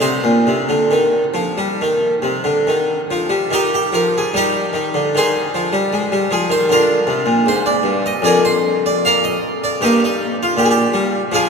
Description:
classical, baroque-style suite movement for harpsichord; 66-80 BPM; 4/4; rubato; C minor, Eb major from 3.5 s; A4 = 441 Hz
harpsichord; solo; 0.0-11.5 s; F2 to F5; -14 LUFS; equal
wet cathedral reverb, RT60 5.9 s; in a vast, echoing space; -14 LUFS; side -5 dB against mid
0.0-3.5 A section; 3.5-11.5 A section
0.0 Cm; 3.5 Eb; 5.2 Ab/Eb; 6.7 Bb7; 9.8 Eb/G
| 0.03 0.93 1.81 2.68 | 3.54 4.35 5.16 5.94 | 6.71 7.47 8.23 9.03 | 9.81 10.57 11.32

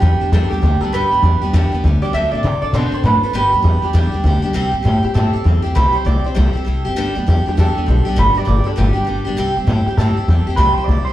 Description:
rockabilly; 199 BPM; 4/4; swing 62% on 8ths; G major; A4 = 438 Hz
electric guitar through a small old amp; melody; 0.0-11.1 s; G4 to E5; -20 LUFS; right 3 dB; analog chorus, plate reverb, slapback echo, tape echo
picked steel-string acoustic guitar; accompaniment; 0.0-11.1 s; G2 to A4; -21 LUFS; left 1 dB; plate reverb
upright bass; bass; 0.0-11.1 s; F#1 to C3; -15 LUFS; equal
light reverb; live gig heard through the venue's PA, club reverb; -13 LUFS; side -14 dB against mid
0.0-4.6 A section; 4.6-11.1 B section
0.0 G; 2.1 D7; 3.3 G; 4.6 C; 7.0 G; 9.4 C
0.02 0.32 0.62 | 0.93 1.23 1.53 1.83 | 2.13 2.44 2.74 3.04 | 3.34 3.65 3.95 4.25 | 4.55 4.86 5.16 5.46 | 5.76 6.06 6.36 6.67 | 6.97 7.27 7.57 7.87 | 8.17 8.47 8.77 9.07 | 9.38 9.68 9.98 10.28 | 10.58 10.88

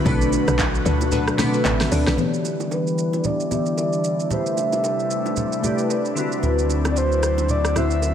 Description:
amapiano; 113 BPM; 4/4; swing 58% on 16ths; E minor; A4 = 440 Hz
glassy digital keys; accompaniment; 0.0-8.1 s; B2 to E5; -24 LUFS; left 1 dB; chorus, low-pass filter
airy breathy pad; sustained chords; 0.0-8.1 s; C3 to B4; -26 LUFS; left 1 dB; chorus, sidechain pumping, low-pass filter
glassy wavetable pluck; stabs; 0.0-2.2 s; D4 to B4; -29 LUFS; left 3 dB; chorus, tape echo
woody log drum bass; bass; 0.0-2.2 s; A1 to D2; -22 LUFS; equal
deep house drum kit; drums; 0.1-8.1 s; handclaps, hi-hat, kick drum, rim click, shaker, snare drum; -26 LUFS; right 1 dB; overdrive, vintage 12-bit sampler grit
congas and bongos; percussion; 0.1-8.1 s; -31 LUFS; right 4 dB
breathy flute-like synth lead; melody; 2.7-8.1 s; B4 to E5; -25 LUFS; equal; chorus, low-pass filter, tape echo
round analog bass; bass; 6.4-8.1 s; D2; -22 LUFS; equal
light reverb; -19 LUFS; side -9 dB against mid
0.0-2.2 A section; 2.2-8.1 B section
drop 0.0-2.2; kick muted 1.1-2.2; filter sweep 2.2-8.1
0.1 Bm7; 2.2 Em7; 4.3 Am9; 6.2 D13
| 0.06 0.59 1.12 1.65 | 2.18 2.71 3.24 3.77 | 4.31 4.84 5.37 5.90 | 6.43 6.96 7.49 8.02

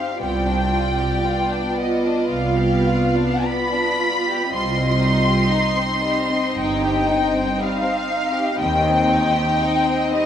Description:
classical, slow romantic movement for string orchestra; 50-61 BPM; 4/4; rubato; C minor; A4 = 440 Hz
dark studio violin section; melody; 0.0-10.3 s; Eb5 to C6; -22 LUFS; left 1 dB
rich studio violin section; second line; 0.0-10.3 s; G3 to Eb5; -26 LUFS; left 3 dB
dark chamber viola section; accompaniment; 0.0-10.3 s; B3 to F4; -23 LUFS; right 1 dB
warm studio cello section; bass; 0.2-9.4 s; C2 to G2; -26 LUFS; right 2 dB
warm studio double bass section; bass; 0.2-9.4 s; G1 to Eb2; -26 LUFS; right 2 dB
moderate scoring stage reverb, RT60 1.8 s; close, detailed microphones; -17 LUFS; side -9 dB against mid
0.0-10.3 A section
0.2 G7/C; 4.5 Cm; 8.6 Cm/Eb
| 0.21 1.26 2.31 3.46 | 4.53 5.54 6.57 7.61 | 8.60 9.62

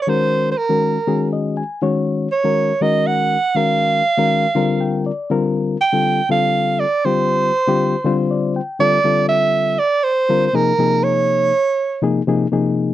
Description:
jazz; 241 BPM (eighths); 7/8; straight; A4 = 437 Hz
clear soprano saxophone; melody; 0.0-12.0 s; Bb4 to G5; -16 LUFS; right 3 dB; slapback echo
reed electric piano; accompaniment; 0.1-12.9 s; C3 to Ab5; -18 LUFS; left 4 dB
little or no reverb; dry, close 1970s-style studio recording; -15 LUFS; side -13 dB against mid
0.0-8.8 A section; 8.8-12.9 B section
reed electric piano fill 1.1-1.8, 4.6-5.3, 8.0-8.8
0.1 Ab9sus4; 4.6 C9sus4; 8.8 Csus4; 10.5 Bb9sus4
| 0.07 0.32 0.57 0.82 1.07 1.32 1.57 | 1.82 2.07 2.32 2.56 2.81 3.06 3.31 | 3.56 3.81 4.06 4.31 4.56 4.81 5.06 | 5.30 5.55 5.80 6.05 6.30 6.55 6.80 | 7.05 7.30 7.55 7.79 8.04 8.29 8.54 | 8.79 9.04 9.29 9.54 9.79 10.04 10.29 | 10.54 10.78 11.03 11.28 11.53 11.78 12.03 | 12.28 12.53 12.78

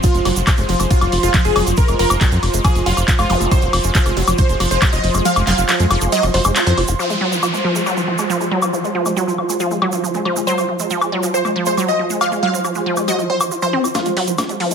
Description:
psychedelic trance; 138 BPM; 4/4; straight; F phrygian; A4 = 444 Hz
supersaw stab; melody; 0.0-6.8, 10.5-14.1 s; F4 to F5; -22 LUFS; right 1 dB; phaser, sidechain pumping, dub echo
wide unison pluck; riff; 0.0-14.7 s; F3 to F4; -20 LUFS; equal; auto-pan, sidechain pumping, dub echo
electronic kick drum; drums; 0.0-4.9, 13.9-14.5 s; -15 LUFS; equal; high-pass filter on kick
techno drum kit; drums; 0.0-14.7 s; handclaps, hi-hat, ride cymbal, snare drum, woodblock; -21 LUFS; left 2 dB; low-pass filter on hats, low-pass filter on cymbals, low-pass filter on perc, low-pass filter on snare, low-pass filter on room
tube shaker; percussion; 0.0-14.7 s; -28 LUFS; right 7 dB
ethereal airy pad; texture; 0.0-14.7 s; F4 to C6; -24 LUFS; right 2 dB; ensemble chorus, built-in reverb, sidechain pumping
round analog bass; bass; 0.1-6.9, 14.1-14.7 s; F1 to F2; -19 LUFS; equal; high-pass filter
zap, downlifter and riser; sound effects; 3.3-3.4, 7.0-10.5, 14.6-14.7 s; -26 LUFS; equal
moderate digital room reverb, RT60 1.2 s; -14 LUFS; side -7 dB against mid
0.0-7.0 A section; 7.0-13.9 B section
drop 0.0-7.0; kick drops out 5.3-7.0; band accent 6.6; filter sweep on drum 7.0-13.9; filter sweep on synth arpeggio sound 7.0-13.9; drum fill 13.9-14.7
0.0 F5
| 0.04 0.47 0.91 1.34 | 1.77 2.21 2.65 3.08 | 3.51 3.95 4.38 4.82 | 5.25 5.69 6.12 6.56 | 6.99 7.43 7.86 8.30 | 8.73 9.17 9.60 10.04 | 10.47 10.91 11.34 11.78 | 12.21 12.64 13.08 13.51 | 13.95 14.38

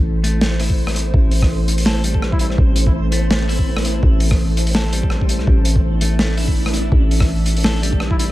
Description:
half-time drum and bass; 166 BPM; 4/4; swing 57% on 16ths, half-time; A minor; A4 = 439 Hz
dark analog pad; sustained chords; 0.0-8.3 s; A3 to E5; -28 LUFS; right 2 dB; chorus, sidechain pumping
growling 808-style bass; bass; 0.0-8.3 s; A1 to C2; -18 LUFS; equal
flickering grainy texture; texture; 0.0-8.3 s; C4 to C5; -28 LUFS; right 1 dB; built-in reverb
clean electric guitar; arpeggios; 0.2-8.3 s; G3 to A4; -29 LUFS; left 3 dB; dub echo
crunchy breakbeat drum kit; drums; 0.2-8.3 s; hi-hat, rim click, snare drum; -22 LUFS; equal
electronic kick drum; drums; 0.7-8.2 s; -17 LUFS; equal
trumpet with bucket mute; melody; 2.3-2.5, 8.1-8.3 s; E4; -30 LUFS; left 1 dB; tape echo
small room ambience; echo-heavy mix; -14 LUFS; side -16 dB against mid
0.0-8.3 A section
0.0 Am
0.05 0.41 0.78 | 1.14 1.50 1.86 2.22 | 2.58 2.94 3.31 3.67 | 4.03 4.39 4.75 5.11 | 5.47 5.83 6.20 6.56 | 6.92 7.28 7.64 8.00

